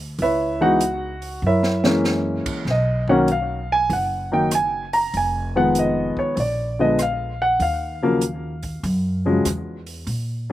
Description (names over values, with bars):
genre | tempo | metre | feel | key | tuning
jazz piano trio | 97 BPM | 4/4 | swing 67% on 8ths | Eb minor | A4 = 440 Hz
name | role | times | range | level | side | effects
upright bass | bass | 0.0-10.5 s | F1 to Bb2 | -26 LUFS | equal | none
warm upright piano | melody | 0.2-10.5 s | Db3 to A#5 | -19 LUFS | equal | slapback echo
open jazz drum kit | drums | 0.2-10.3 s | crash cymbal, hi-hat, kick drum, rim click, snare drum | -30 LUFS | right 1 dB | none
room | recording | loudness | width
little or no reverb | recorded outdoors, with no room sound | -18 LUFS | side -14 dB against mid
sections
0.0-10.5 A section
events
drum fill 1.4-2.0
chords
0.2 Dbm7; 1.4 Gb9; 2.7 Bmaj7; 5.1 Fm7b5; 6.4 Bb; 7.6 Ebm